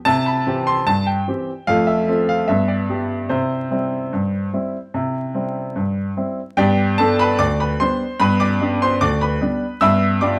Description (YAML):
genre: ragtime piano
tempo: 74 BPM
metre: 2/4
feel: straight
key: C major, G major from 6.6 s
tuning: A4 = 440 Hz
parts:
  - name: clear grand piano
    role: solo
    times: 0.1-10.4 s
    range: D2 to E6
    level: -19 LUFS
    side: equal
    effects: none
room: wet small room reverb, RT60 0.6 s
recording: heard from further back in the room, vinyl crackle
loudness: -19 LUFS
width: mono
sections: 0.0-6.6 A section; 6.6-10.4 B section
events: none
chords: 0.1 C; 1.7 F; 2.5 G; 3.3 C; 6.6 G; 9.8 G7